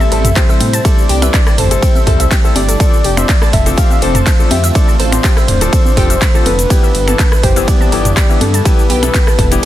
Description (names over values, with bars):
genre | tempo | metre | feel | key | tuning
progressive house | 123 BPM | 4/4 | straight | unclear | A4 = 438 Hz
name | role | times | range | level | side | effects
soft octave-layered synth lead | melody | 0.0-9.7 s | A4 to F5 | -20 LUFS | left 2 dB | chorus, sidechain pumping, dub echo
soft synth bell | second line | 0.0-9.7 s | A4 to F5 | -28 LUFS | equal | none
lush unison pad | sustained chords | 0.0-9.7 s | C3 to F4 | -23 LUFS | right 1 dB | chorus, vintage 12-bit sampler grit, sidechain pumping
analog pluck | arpeggios | 0.0-9.7 s | G4 to A5 | -22 LUFS | right 1 dB | chorus, sidechain pumping, dub echo
clear concert grand piano | stabs | 0.0-9.7 s | E3 to C5 | -20 LUFS | left 6 dB | sidechain pumping, dub echo
big-room dance drum kit | drums | 0.0-9.7 s | finger snaps, handclaps, hi-hat, ride cymbal, shaker | -19 LUFS | equal | overdrive, sidechain pumping on hats, sidechain pumping on cymbals, sidechain pumping on perc
punchy analog drum machine | percussion | 0.0-9.5 s | congas, rim click, toms | -19 LUFS | equal | overdrive, sidechain pumping on perc, sidechain pumping on snare, sidechain pumping on toms
dark detuned saw bass | bass | 0.1-9.6 s | D1 to A2 | -15 LUFS | equal | sidechain pumping
electronic kick drum | drums | 0.4-9.5 s | none | -11 LUFS | equal | overdrive
room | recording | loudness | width
digital ambience | dense, heavily limited modern master | -9 LUFS | side -13 dB against mid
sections
0.0-9.7 A section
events
none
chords
0.0 Am7; 2.8 F6; 6.7 G6